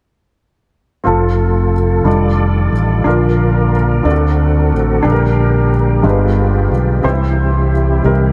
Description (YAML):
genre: gospel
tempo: 60 BPM (dotted quarters)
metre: 6/8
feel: straight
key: F major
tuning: A4 = 445 Hz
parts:
  - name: dark baby grand piano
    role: accompaniment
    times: 1.0-8.3 s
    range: G2 to D5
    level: -20 LUFS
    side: equal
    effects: subtle chorus
  - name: tonewheel organ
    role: sustained chords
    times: 1.1-8.3 s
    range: C3 to D5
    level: -19 LUFS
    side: equal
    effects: slow rotary speaker, chorus vibrato
  - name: fingered electric bass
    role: bass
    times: 1.1-8.3 s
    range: F1 to D2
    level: -16 LUFS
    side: equal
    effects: none
room: moderate huge ambient reverb, RT60 7.3 s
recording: dreamy mix soaked in reverb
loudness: -14 LUFS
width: mono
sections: 1.1-8.3 A section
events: none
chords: 1.1 F; 2.1 F13; 3.1 Bb; 4.1 D7; 5.1 Gm/Bb; 6.0 G7b9; 7.0 C